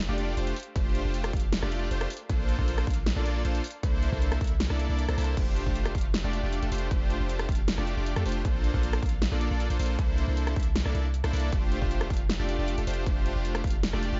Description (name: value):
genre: future bass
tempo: 156 BPM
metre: 4/4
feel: half-time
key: F major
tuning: A4 = 440 Hz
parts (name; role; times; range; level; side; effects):
- warm 808-style bass; bass; 0.0-14.2 s; F1 to F2; -31 LUFS; equal; tube saturation, sidechain pumping
- big bright polysynth; riff; 0.1-14.2 s; A3 to F5; -35 LUFS; equal; sidechain pumping, dub echo
- big-room dance drum kit; drums; 0.2-14.1 s; crash cymbal, hi-hat, rim click, snare drum; -37 LUFS; equal; none
- electronic kick drum; drums; 0.8-13.7 s; none; -31 LUFS; equal; none
room: little or no reverb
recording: dark, warm production, nothing above 7.6 kHz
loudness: -28 LUFS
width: mono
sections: 0.0-5.4 A section; 5.4-14.2 A section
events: drop 0.0-5.4, 5.4-14.2; band accent 5.1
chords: 0.0 F69; 2.3 Bbmaj9; 3.8 C13; 5.4 F69; 8.4 Bbmaj9; 10.0 C13; 11.5 F69